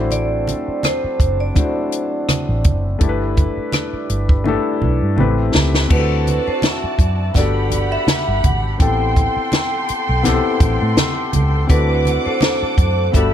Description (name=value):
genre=lush 1970s-style soul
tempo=83 BPM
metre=4/4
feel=swing 54% on 16ths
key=unclear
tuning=A4 = 440 Hz
part: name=dark concert grand piano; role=accompaniment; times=0.0-13.3 s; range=A3 to C5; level=-22 LUFS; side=left 5 dB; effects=none
part: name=mellow French horn section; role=sustained chords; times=0.0-5.9, 11.7-13.3 s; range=D3 to B4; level=-30 LUFS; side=right 1 dB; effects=none
part: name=vintage muted fingered electric bass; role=bass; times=0.0-13.3 s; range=F#1 to A2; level=-19 LUFS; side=equal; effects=none
part: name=vibraphone with hard mallets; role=melody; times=0.1-13.3 s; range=B4 to G5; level=-24 LUFS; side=right 2 dB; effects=none
part: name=compact cocktail drum kit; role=drums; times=0.1-13.3 s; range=crash cymbal, hi-hat, kick drum, rim click, snare drum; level=-17 LUFS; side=equal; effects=none
part: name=congas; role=percussion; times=0.1-13.3 s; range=none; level=-24 LUFS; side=right 4 dB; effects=none
part: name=dark studio violin section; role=second line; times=5.9-13.3 s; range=F#4 to D6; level=-24 LUFS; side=right 1 dB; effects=none
room=small room ambience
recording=dark, warm production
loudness=-15 LUFS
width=side -10 dB against mid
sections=0.0-5.9 A section; 5.9-13.3 B section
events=drum fill 4.5-5.9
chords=0.0 D7; 3.0 G6; 5.2 Am7; 5.9 D7; 7.4 Gmaj7; 8.8 Am7; 11.7 D7